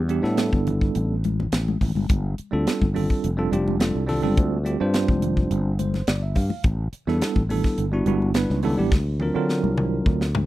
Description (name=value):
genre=electric jazz fusion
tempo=105 BPM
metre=4/4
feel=straight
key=unclear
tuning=A4 = 438 Hz
part: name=sustaining fretless electric bass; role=bass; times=0.0-10.5 s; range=F1 to D3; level=-24 LUFS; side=equal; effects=none
part: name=bell-like tine electric piano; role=accompaniment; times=0.1-10.3 s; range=F#3 to F5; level=-24 LUFS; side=right 2 dB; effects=medium stereo tremolo
part: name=crisp fusion drum kit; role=drums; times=0.1-10.5 s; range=hi-hat, kick drum, snare drum, toms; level=-23 LUFS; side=equal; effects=none
part: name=congas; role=percussion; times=0.5-10.5 s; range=none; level=-30 LUFS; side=left 5 dB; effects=none
room=little or no reverb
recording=dry, close 1970s-style studio recording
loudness=-20 LUFS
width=side -15 dB against mid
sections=0.0-10.5 A section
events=tine electric piano fill 5.5-6.7; drum fill 8.9-10.5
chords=0.0 A9sus4; 2.1 G9sus4; 6.7 A9sus4; 8.9 D7alt